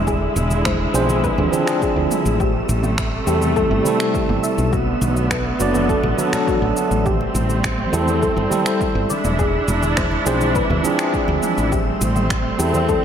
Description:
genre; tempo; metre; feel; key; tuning
sunset chillout; 103 BPM; 4/4; straight; A minor; A4 = 438 Hz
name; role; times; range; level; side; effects
dark chamber string section; sustained chords; 0.0-13.0 s; C3 to E4; -23 LUFS; right 2 dB; none
soft round pluck; arpeggios; 0.0-13.0 s; F#4 to E5; -26 LUFS; left 4 dB; chorus, tape echo
woody fretless electric bass; bass; 0.0-12.9 s; E1 to E2; -22 LUFS; equal; none
wind-like tuned noise texture; texture; 0.0-13.0 s; E5 to E6; -31 LUFS; left 1 dB; built-in reverb
deep house drum kit; drums; 0.1-13.0 s; finger snaps, shaker, toms; -28 LUFS; right 1 dB; overdrive
electronic kick drum; drums; 0.1-13.0 s; none; -25 LUFS; equal; overdrive
congas; percussion; 0.4-12.9 s; none; -31 LUFS; right 1 dB; none
bell-like tine electric piano; accompaniment; 0.9-13.0 s; F3 to D5; -22 LUFS; equal; auto-pan, tape echo
room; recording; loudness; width
wet plate reverb, RT60 2.4 s; dreamy mix soaked in reverb; -16 LUFS; side -8 dB against mid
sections
0.0-13.0 A section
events
none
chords
0.0 E7b9b13; 2.4 Am7; 4.7 Bm7; 7.1 Am7; 9.1 E7b9b13; 11.7 Am7

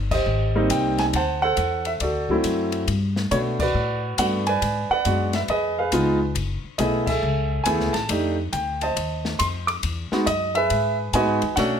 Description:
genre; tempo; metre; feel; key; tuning
jazz piano trio; 138 BPM; 4/4; swing 65% on 8ths; unclear; A4 = 444 Hz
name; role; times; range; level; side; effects
upright bass; bass; 0.0-11.8 s; F#1 to B2; -26 LUFS; left 2 dB; none
warm grand piano; melody; 0.1-11.8 s; F#3 to D6; -22 LUFS; right 1 dB; none
open jazz drum kit; drums; 0.1-11.7 s; crash cymbal, hi-hat, kick drum, ride cymbal, snare drum; -31 LUFS; left 4 dB; none
room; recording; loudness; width
moderate club reverb, RT60 0.9 s; none; -20 LUFS; side -8 dB against mid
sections
0.0-11.8 A section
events
band accent 0.0, 3.5, 7.0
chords
0.0 G#maj7; 1.1 D7; 2.9 Gmaj7; 4.6 G#m7b5; 5.5 C#7; 6.4 F#m11; 8.1 F13; 9.8 Emaj9

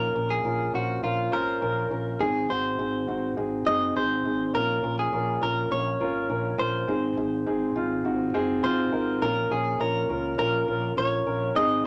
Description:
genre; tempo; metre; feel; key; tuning
piano-driven pop; 103 BPM; 4/4; straight; Bb minor; A4 = 438 Hz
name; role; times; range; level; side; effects
direct-recorded clean electric guitar; melody; 0.0-11.8 s; F4 to Eb5; -30 LUFS; equal; harmonic tremolo
dark grand piano; accompaniment; 0.0-11.9 s; Ab2 to Db5; -29 LUFS; equal; none
mellow fretless electric bass; bass; 0.0-11.9 s; Gb1 to Db2; -36 LUFS; equal; none
room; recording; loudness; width
wet studio reverb, RT60 0.6 s; none; -26 LUFS; mono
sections
0.0-9.2 A section; 9.2-11.9 B section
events
none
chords
0.0 Bbm; 2.2 Ab; 4.5 Bbm; 6.9 Ab; 9.2 Bbm

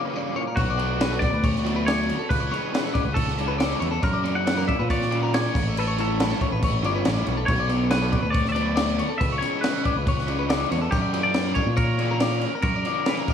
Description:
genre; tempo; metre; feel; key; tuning
math rock and midwest emo; 139 BPM; 4/4; straight; B minor; A4 = 442 Hz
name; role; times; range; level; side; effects
twangy electric guitar; melody; 0.0-13.3 s; F#4 to F#5; -29 LUFS; equal; lush chorus, analog delay
twangy electric guitar; accompaniment; 0.0-0.6 s; F#2 to C#4; -37 LUFS; right 5 dB; analog chorus
clean electric guitar; arpeggios; 0.0-13.3 s; A4 to D5; -30 LUFS; left 6 dB; analog chorus, analog delay
overdriven electric guitar; riff; 0.0-13.3 s; B2 to F#4; -29 LUFS; equal; none
growling fingered electric bass; bass; 0.6-12.8 s; G1 to A#2; -26 LUFS; equal; overdrive
compact cocktail drum kit; drums; 0.6-13.3 s; crash cymbal, kick drum, snare drum; -26 LUFS; equal; none
room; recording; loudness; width
moderate huge ambient reverb, RT60 4.1 s; dreamy mix soaked in reverb, studio reverb; -21 LUFS; side -8 dB against mid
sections
0.6-13.3 A section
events
break 0.0-0.6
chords
0.0 F#7b9b13; 0.6 Bm9; 2.3 C#m7; 4.0 F#7b13; 5.5 A9; 7.5 Bm9; 9.2 C#m7; 10.9 F#7b13

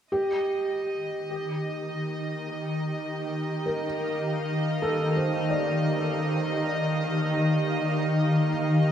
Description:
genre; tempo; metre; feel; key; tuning
ambient; 52 BPM; 4/4; straight; Eb lydian; A4 = 440 Hz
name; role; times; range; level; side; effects
shimmering ambient pad; sustained chords; 1.3-8.9 s; Eb3 to F5; -26 LUFS; equal; chorus, built-in reverb
felt-muted upright piano; arpeggios; 0.1-8.9 s; G4 to D5; -31 LUFS; equal; diffuse ambient delay, shimmer reverb
organ-like drone; drone; 1.1-8.9 s; Eb3 to Bb3; -46 LUFS; right 1 dB; none
warm studio violin section; texture; 0.1-8.9 s; Eb5; -33 LUFS; right 1 dB; shimmer reverb
room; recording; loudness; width
wet cathedral reverb, RT60 5.2 s; none; -25 LUFS; side -9 dB against mid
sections
0.1-8.9 A section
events
none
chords
0.1 Ebmaj9

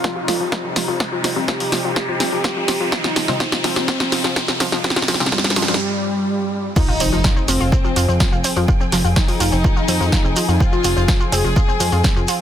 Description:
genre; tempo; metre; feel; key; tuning
melodic techno; 125 BPM; 4/4; straight; F minor; A4 = 445 Hz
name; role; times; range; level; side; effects
wide unison lead; melody; 0.0-12.2 s; G3 to Ab4; -24 LUFS; equal; cassette tape, sidechain pumping, digital delay
dark symphonic string section; sustained chords; 0.0-12.4 s; C3 to G5; -28 LUFS; left 2 dB; sidechain pumping
analog pluck; arpeggios; 0.0-12.3 s; F3 to F4; -25 LUFS; equal; chorus, sidechain pumping, ping-pong delay
fat analog bass; bass; 0.0-12.3 s; F1 to F2; -22 LUFS; equal; sidechain pumping, high-pass filter
electronic kick drum; drums; 0.0-12.1 s; none; -17 LUFS; equal; high-pass filter on kick
punchy analog drum machine; drums; 0.0-12.4 s; crash cymbal, hi-hat, snare drum; -21 LUFS; equal; sidechain pumping on hats, sidechain pumping on cymbals
riser and impact; sound effects; 0.0-8.7 s; none; -26 LUFS; right 1 dB; none
filtered dub chord stab; stabs; 1.4-5.3 s; C3 to C4; -32 LUFS; left 2 dB; none
warm chamber violin section; second line; 6.8-12.2 s; C4 to Ab4; -27 LUFS; left 4 dB; sidechain pumping, ping-pong delay
shekere; percussion; 6.8-12.4 s; none; -29 LUFS; right 4 dB; none
room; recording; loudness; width
digital ambience; dense, heavily limited modern master; -15 LUFS; side -10 dB against mid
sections
0.0-6.8 A section; 6.8-12.4 B section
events
build-up 0.0-6.8; drum fill 0.0-5.8; riser 0.0-5.8; break 5.8-6.8; drop 6.8-12.4; impact 6.8-8.7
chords
0.0 Cm/F; 6.8 Fm

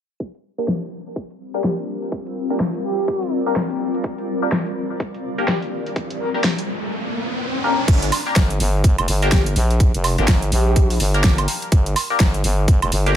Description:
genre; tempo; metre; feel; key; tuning
bass house; 125 BPM; 4/4; swing 60% on 16ths; G minor; A4 = 441 Hz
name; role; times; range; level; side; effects
big-room dance drum kit; drums; 0.2-13.1 s; crash cymbal, hi-hat, snare drum, woodblock; -23 LUFS; equal; overdrive, studio reverb
electronic kick drum; drums; 0.2-12.8 s; none; -17 LUFS; equal; high-pass filter on kick, studio reverb
granular cloud pad; texture; 1.5-6.9 s; G3 to D5; -27 LUFS; left 1 dB; built-in reverb, sidechain pumping
band-passed chord stab; stabs; 0.6-13.2 s; Bb3 to Bb4; -26 LUFS; left 2 dB; phaser, wide subtle chorus, sidechain pumping, tape echo
breathy flute-like synth lead; melody; 1.5-13.1 s; G4 to Bb4; -28 LUFS; right 1 dB; analog chorus, tape echo
riser; sound effects; 5.6-7.9 s; none; -26 LUFS; left 1 dB; none
growling FM bass; bass; 7.9-13.2 s; F1 to Bb1; -19 LUFS; equal; overdrive, sidechain pumping
room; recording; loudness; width
light reverb; low-pass filter; -17 LUFS; side -10 dB against mid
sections
0.2-7.9 A section; 7.9-13.2 B section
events
filter sweep 0.2-7.9; riser 5.6-7.9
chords
0.2 Gm

